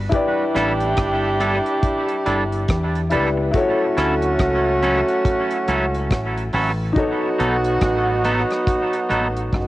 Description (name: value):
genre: lovers rock reggae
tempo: 70 BPM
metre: 4/4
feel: swing 61% on 16ths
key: D major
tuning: A4 = 437 Hz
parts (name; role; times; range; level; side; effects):
- warm grand piano; accompaniment; 0.0-9.7 s; D#4 to D5; -25 LUFS; left 2 dB; cassette tape
- deep dub fingered electric bass; bass; 0.0-9.7 s; F#1 to E2; -24 LUFS; equal; none
- warm horn section; second line; 0.1-9.7 s; F#3 to G4; -21 LUFS; right 1 dB; cassette tape
- deep reggae drum kit; drums; 0.1-9.7 s; hi-hat, kick drum, rim click; -24 LUFS; equal; cassette tape, tape echo
- twangy electric guitar; stabs; 0.5-9.3 s; F#3 to A4; -24 LUFS; right 1 dB; wide subtle chorus, cassette tape, tape echo
room: light reverb, small room ambience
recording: home recording on cassette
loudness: -17 LUFS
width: side -16 dB against mid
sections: 0.0-9.7 A section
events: none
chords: 0.1 A7sus4; 3.5 Dmaj9 (rootless); 7.0 B7